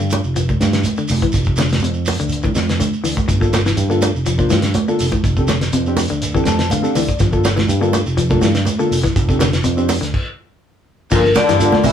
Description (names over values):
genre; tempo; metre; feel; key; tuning
afrobeat; 123 BPM; 4/4; straight; G dorian; A4 = 440 Hz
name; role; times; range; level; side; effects
semi-hollow electric guitar; arpeggios; 0.0-11.9 s; C3 to F3; -22 LUFS; left 6 dB; none
fingered electric bass; bass; 0.0-11.9 s; F1 to G2; -19 LUFS; right 1 dB; none
cloth-damped thuddy drum kit; drums; 0.1-11.9 s; crash cymbal, hi-hat, kick drum, snare drum; -20 LUFS; equal; none
congas; percussion; 0.1-11.9 s; none; -21 LUFS; right 4 dB; none
shekere; percussion; 0.1-11.9 s; none; -26 LUFS; right 3 dB; none
reed electric piano; accompaniment; 3.4-11.8 s; Bb3 to A5; -20 LUFS; left 1 dB; overdrive
vibraphone with hard mallets; melody; 11.1-11.9 s; Bb4 to E5; -16 LUFS; left 4 dB; none
raspy baritone saxophone; second line; 11.1-11.9 s; Bb2 to E3; -23 LUFS; left 4 dB; none
trombone with plunger mute; second line; 11.1-11.9 s; Bb2 to E3; -21 LUFS; equal; none
room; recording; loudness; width
moderate studio reverb, RT60 0.5 s; band playing live in one room; -14 LUFS; side -9 dB against mid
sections
0.0-11.1 A section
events
reed electric piano fill 6.2-7.2; stop 10.1-11.1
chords
0.0 G5; 1.3 F5; 3.3 Gm9; 5.3 F6; 7.2 Gm9; 9.2 F5; 11.1 Gm9